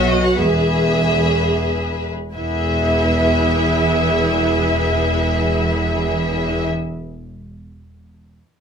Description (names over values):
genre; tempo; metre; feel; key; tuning
quick classical-period movement for string orchestra; free time; none; none; E major; A4 = 435 Hz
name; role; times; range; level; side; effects
rich studio violin section; melody; 0.0-6.7 s; D#5 to F#5; -23 LUFS; left 2 dB; none
rich studio violin section; second line; 0.0-6.7 s; F#4 to C#5; -22 LUFS; equal; none
rich studio viola section; accompaniment; 0.0-6.7 s; B3 to G#4; -22 LUFS; equal; none
rich studio cello section; bass; 0.0-6.7 s; E2 to B2; -23 LUFS; equal; none
rich studio double bass section; bass; 0.0-6.7 s; E1 to B1; -23 LUFS; right 2 dB; none
room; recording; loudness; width
light reverb; minimal, uncompressed stereo recording; -16 LUFS; side -7 dB against mid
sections
0.0-2.4 A section; 2.4-6.4 B section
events
slowing down 0.0-2.4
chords
0.4 E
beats
free time